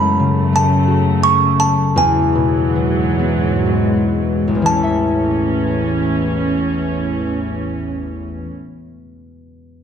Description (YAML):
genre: children's music, lullaby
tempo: 57-89 BPM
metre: 3/4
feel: rubato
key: A major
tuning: A4 = 440 Hz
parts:
  - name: music box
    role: melody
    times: 0.0-8.5 s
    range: G#5 to C#6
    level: -18 LUFS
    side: right 3 dB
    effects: none
  - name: concert harp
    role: accompaniment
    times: 0.0-8.7 s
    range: A1 to E5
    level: -17 LUFS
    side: left 3 dB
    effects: none
  - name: warm studio string section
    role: sustained chords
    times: 0.0-8.5 s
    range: F#2 to C#4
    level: -20 LUFS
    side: right 4 dB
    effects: none
room: wet recital hall reverb, RT60 1.6 s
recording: dark, warm production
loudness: -14 LUFS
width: side -8 dB against mid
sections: 0.0-4.7 A section; 4.7-9.8 B section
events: slowing down 0.0-4.7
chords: 0.0 F#m; 2.0 Eadd9; 4.7 A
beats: 0.53 1.22 | 1.96 2.76 3.65 | 4.65 5.70 6.73 | 7.75